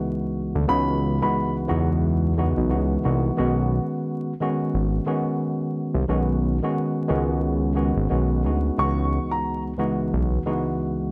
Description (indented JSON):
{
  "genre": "hip hop, boom-bap hip-hop",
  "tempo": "89 BPM",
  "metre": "4/4",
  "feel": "swing 57% on 16ths",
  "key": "C# minor",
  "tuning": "A4 = 439 Hz",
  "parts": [
    { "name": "mellow tine electric piano", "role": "accompaniment", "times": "0.0-11.1 s", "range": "C#2 to F#4", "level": "-26 LUFS", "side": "equal", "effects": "cassette tape" },
    { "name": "fat analog bass", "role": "bass", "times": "0.6-10.4 s", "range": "G#1 to E2", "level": "-25 LUFS", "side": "equal", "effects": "none" },
    { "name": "dark upright piano", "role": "melody", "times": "0.7-1.5, 8.8-9.6 s", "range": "A#5 to C#6", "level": "-28 LUFS", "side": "equal", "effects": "plate reverb, tape echo" }
  ],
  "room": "light reverb",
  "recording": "vinyl crackle",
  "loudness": "-23 LUFS",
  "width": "mono",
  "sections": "0.0-11.1 A section",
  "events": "none",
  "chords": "0.0 C#m11; 3.4 B69; 8.8 C#m11"
}